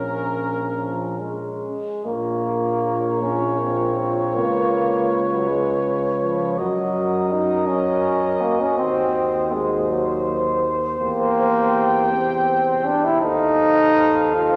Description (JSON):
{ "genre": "classical, hymn-like piece for brass band", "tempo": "54 BPM (dotted quarters)", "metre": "6/8", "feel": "uneven beats, rubato", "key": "Bb minor", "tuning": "A4 = 439 Hz", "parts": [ { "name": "warm cornet", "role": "melody", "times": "0.0-14.6 s", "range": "Bb4 to G5", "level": "-28 LUFS", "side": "equal", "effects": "none" }, { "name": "mellow French horn section", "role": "second line", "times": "0.0-14.6 s", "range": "Db4 to C5", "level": "-29 LUFS", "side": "equal", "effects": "none" }, { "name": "clear trombone", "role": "accompaniment", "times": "0.0-14.6 s", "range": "F3 to F4", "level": "-24 LUFS", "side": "equal", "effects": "none" }, { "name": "warm euphonium", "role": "accompaniment", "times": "0.0-14.6 s", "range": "Db4 to A4", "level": "-28 LUFS", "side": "equal", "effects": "none" }, { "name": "mellow tuba", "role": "bass", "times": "0.0-14.6 s", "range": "Bb1 to Gb2", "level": "-31 LUFS", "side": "equal", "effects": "none" } ], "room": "wet scoring stage reverb, RT60 1.8 s", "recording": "none", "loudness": "-21 LUFS", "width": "mono", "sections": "0.0-2.1 A section; 2.1-14.6 A section", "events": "none", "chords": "0.0 Bbm; 4.4 Db7; 6.6 Gb6; 8.8 Cdim/Eb; 11.0 C7/E; 13.2 F7/Eb" }